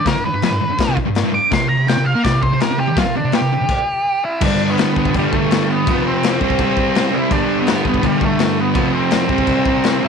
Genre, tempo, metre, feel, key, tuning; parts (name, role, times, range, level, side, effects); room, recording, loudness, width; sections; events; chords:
garage rock duo or trio; 166 BPM; 4/4; straight; G mixolydian; A4 = 444 Hz
octave-fuzz lead guitar; melody; 0.0-10.1 s; G3 to D6; -20 LUFS; right 1 dB; distortion, tape echo
thick fuzz guitar; riff; 0.1-10.1 s; F2 to C4; -17 LUFS; right 1 dB; distortion
raw garage drum kit; drums; 0.1-9.9 s; crash cymbal, kick drum, snare drum; -20 LUFS; left 4 dB
small room ambience; 1960s-style stereo; -14 LUFS; side -6 dB against mid
0.0-4.4 A section; 4.4-10.1 B section
lead electric guitar solo 0.0-4.4; stop 3.7-4.4
0.0 G; 1.5 C5; 4.4 G5; 5.9 F5; 6.4 C5; 7.3 G5; 8.7 F5; 9.3 C5